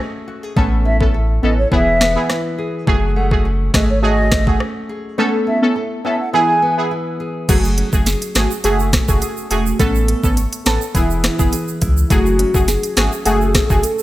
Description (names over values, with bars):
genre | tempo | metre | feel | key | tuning
dancehall | 104 BPM | 4/4 | straight | F# minor | A4 = 441 Hz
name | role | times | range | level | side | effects
flamenco guitar | arpeggios | 0.0-14.0 s | E3 to C#5 | -24 LUFS | left 1 dB | none
synth brass stab | accompaniment | 0.6-13.8 s | A3 to A4 | -20 LUFS | right 1 dB | chorus, phaser, sidechain pumping
warm sub bass | bass | 0.6-13.8 s | E1 to C#2 | -18 LUFS | equal | none
island pop drum kit | drums | 0.6-14.0 s | crash cymbal, hi-hat, kick drum, rim click, snare drum | -17 LUFS | equal | overdrive
mellow hollow silver concert flute | melody | 0.9-6.8 s | C#5 to G#5 | -20 LUFS | right 1 dB | digital delay
tube shaker | percussion | 7.5-14.0 s | none | -30 LUFS | right 8 dB | none
hollow clarinet-like synth lead | second line | 12.1-14.0 s | F#4 to A4 | -20 LUFS | left 2 dB | chorus, phaser, digital delay
room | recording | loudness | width
little or no reverb | none | -14 LUFS | side -15 dB against mid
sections
0.0-7.5 A section; 7.5-14.0 B section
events
none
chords
0.0 F#madd9; 0.6 Aadd9; 1.7 E; 2.9 F#madd9; 5.2 Aadd9; 6.3 E; 7.5 F#madd9; 9.8 Aadd9; 10.9 E; 12.1 F#madd9